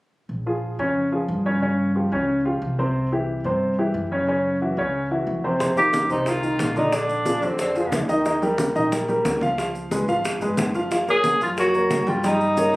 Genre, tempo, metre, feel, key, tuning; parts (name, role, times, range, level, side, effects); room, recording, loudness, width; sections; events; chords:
Afro-Cuban jazz; 181 BPM; 4/4; straight; F minor; A4 = 440 Hz
upright bass; bass; 0.3-12.8 s; Gb1 to G2; -28 LUFS; equal
warm baby grand piano; accompaniment; 0.5-12.7 s; C3 to G5; -22 LUFS; equal
bongos; percussion; 5.6-12.7 s; -30 LUFS; left 1 dB
congas; percussion; 5.6-12.8 s; -30 LUFS; equal
maracas; percussion; 5.6-12.8 s; -40 LUFS; right 1 dB
breathy tenor saxophone; melody; 5.8-8.1, 11.1-12.8 s; C4 to Ab4; -21 LUFS; equal
moderate small room reverb, RT60 0.5 s; recorded on a phone in the room, club reverb; -20 LUFS; side -21 dB against mid
0.3-5.6 A section; 5.6-12.8 B section
0.3 Bbm7; 1.6 Dbmaj7#11; 3.0 C; 4.3 Gb5; 5.6 Fsus2; 6.9 Bb9; 8.3 Ebadd9; 9.6 Db7; 10.9 Gbmaj7; 12.2 Gdim